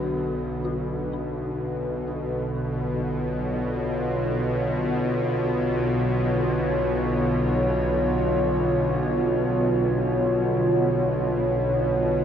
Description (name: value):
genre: dark ambient drone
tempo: free time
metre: none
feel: none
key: unclear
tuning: A4 = 441 Hz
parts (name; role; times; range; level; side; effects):
- dark analog pad; sustained chords; 0.0-12.2 s; D3 to C#5; -25 LUFS; equal; chorus, phaser
- dark detuned synth bell; arpeggios; 0.0-12.2 s; C#4 to F#4; -35 LUFS; left 4 dB; chorus, ping-pong delay
- bowed-like drone; drone; 0.0-12.2 s; B1 to B2; -25 LUFS; equal; built-in reverb
room: wet huge ambient reverb, RT60 7.7 s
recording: worn, warbling old tape, cassette tape, warbly pitch drift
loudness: -22 LUFS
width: side -8 dB against mid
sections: 0.0-12.2 A section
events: fade-in on synth drone 0.0-12.2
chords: 0.0 Bm; 2.1 Dm